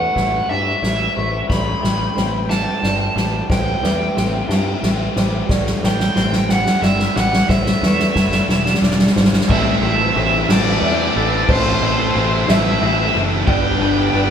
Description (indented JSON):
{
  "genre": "post-rock",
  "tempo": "60 BPM (dotted quarters)",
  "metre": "6/8",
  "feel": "straight",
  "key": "A dorian, A minor from 9.5 s",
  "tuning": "A4 = 439 Hz",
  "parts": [
    { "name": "overdriven electric guitar", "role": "melody", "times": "0.0-14.3 s", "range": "C5 to B5", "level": "-21 LUFS", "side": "right 1 dB", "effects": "none" },
    { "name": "dark chamber string section", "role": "sustained chords", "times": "0.0-14.3 s", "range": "E3 to B5", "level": "-30 LUFS", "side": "left 1 dB", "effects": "none" },
    { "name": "felt-muted upright piano", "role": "arpeggios", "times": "0.0-14.3 s", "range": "A4 to E5", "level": "-29 LUFS", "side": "right 2 dB", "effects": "none" },
    { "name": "twangy electric guitar", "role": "arpeggios", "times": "0.0-9.5 s", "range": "A2 to E4", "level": "-29 LUFS", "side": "left 3 dB", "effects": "none" },
    { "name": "picked electric bass", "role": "bass", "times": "0.0-14.3 s", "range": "E1 to G2", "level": "-22 LUFS", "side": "equal", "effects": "none" },
    { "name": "soft-mallet drum kit", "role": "drums", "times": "0.2-14.3 s", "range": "crash cymbal, kick drum, ride cymbal, snare drum", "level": "-18 LUFS", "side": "equal", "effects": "none" },
    { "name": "distorted electric guitar", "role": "riff", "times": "9.5-14.3 s", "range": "G2 to E4", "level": "-22 LUFS", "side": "right 8 dB", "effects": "overdrive" },
    { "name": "sludgy distorted guitar", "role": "riff", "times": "9.5-14.3 s", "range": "G2 to E4", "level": "-22 LUFS", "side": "left 6 dB", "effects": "overdrive" }
  ],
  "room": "wet large studio reverb, RT60 0.9 s",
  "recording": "band playing live in one room",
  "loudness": "-14 LUFS",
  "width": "side -8 dB against mid",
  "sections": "0.0-9.5 A section; 9.5-14.3 B section",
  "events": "build-up 0.0-9.5; drum fill 0.0-9.5",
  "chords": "0.0 Dadd9/A; 1.5 Am7; 3.5 C/A; 5.5 Am7; 7.5 Dadd9/A; 8.5 E7; 9.5 Am; 13.5 G",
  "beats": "0.50 | 1.50 2.50 | 3.50 4.50 | 5.50 6.50 | 7.50 8.50 | 9.49 10.49 | 11.49 12.48 | 13.48"
}